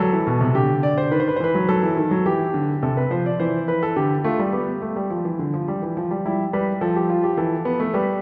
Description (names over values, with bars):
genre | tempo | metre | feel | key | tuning
classical, baroque-style two-part invention for grand piano | 106 BPM | 3/4 | straight | unclear | A4 = 439 Hz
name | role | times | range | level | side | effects
clear concert grand piano | solo | 0.0-8.2 s | B2 to D5 | -21 LUFS | equal | none
room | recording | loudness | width
wet concert hall reverb, RT60 1.9 s | heard from further back in the room | -21 LUFS | mono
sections
0.0-2.8 A section; 2.8-6.2 B section; 6.2-8.2 C section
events
none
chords
0.0 E5; 0.6 G5/D; 1.1 B7/D#; 2.2 Em; 2.8 Am/C; 4.0 Dm; 4.5 N.C.; 6.2 Fmaj7(b5, no3); 7.4 E5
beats
0.00 0.55 | 1.12 1.68 2.25 | 2.82 3.39 3.96 | 4.52 5.09 5.67 | 6.25 6.81 7.37 | 7.93